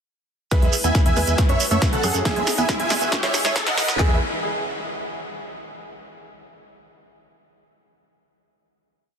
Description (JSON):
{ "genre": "uplifting trance", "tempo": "138 BPM", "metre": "4/4", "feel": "straight", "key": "E major", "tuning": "A4 = 440 Hz", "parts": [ { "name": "dense compressed supersaw", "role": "melody", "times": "0.5-4.2 s", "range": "G#4 to G#5", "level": "-26 LUFS", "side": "right 1 dB", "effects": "sidechain pumping, tape echo" }, { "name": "felt-muted upright piano", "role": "second line", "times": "0.5-4.2 s", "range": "G#4 to B4", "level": "-31 LUFS", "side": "right 1 dB", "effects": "vintage 12-bit sampler grit, digital delay" }, { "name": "lush unison pad", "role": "sustained chords", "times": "0.7-4.2 s", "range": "G#3 to F#4", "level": "-33 LUFS", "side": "left 1 dB", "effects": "chorus, phaser, sidechain pumping" }, { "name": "liquid acid bass", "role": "arpeggios", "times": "0.5-4.2 s", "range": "C#3 to B3", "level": "-29 LUFS", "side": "right 3 dB", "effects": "lush chorus, sidechain pumping, digital delay" }, { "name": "big-room dance drum kit", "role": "drums", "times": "0.5-4.1 s", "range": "handclaps, kick drum, snare drum", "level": "-21 LUFS", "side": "equal", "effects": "none" }, { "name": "big-room dance drum kit", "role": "drums", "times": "0.5-4.0 s", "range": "hi-hat, snare drum", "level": "-27 LUFS", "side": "left 1 dB", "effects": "high-pass filter on snare, high-pass filter on hats, high-pass filter on room" }, { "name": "shekere", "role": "percussion", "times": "0.5-4.0 s", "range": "none", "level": "-29 LUFS", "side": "right 8 dB", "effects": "none" }, { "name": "riser", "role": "sound effects", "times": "1.6-4.0 s", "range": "none", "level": "-30 LUFS", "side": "equal", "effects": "none" }, { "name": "tight sequencer bass", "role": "bass", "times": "0.6-4.2 s", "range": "C#2 to F#2", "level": "-26 LUFS", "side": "equal", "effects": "sidechain pumping" } ], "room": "light reverb, digital ambience", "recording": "dense, heavily limited modern master, high-pass filter", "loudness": "-18 LUFS", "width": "side -7 dB against mid", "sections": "0.5-4.0 build; 4.0-5.7 final chord", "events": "build-up 0.5-4.0; drum fill 0.5-4.0; filter sweep on acid bass 0.5-4.0; filter sweep 0.5-4.0; riser 1.6-4.0", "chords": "0.5 E; 1.4 F#m; 2.3 E; 3.1 C#m; 4.0 E" }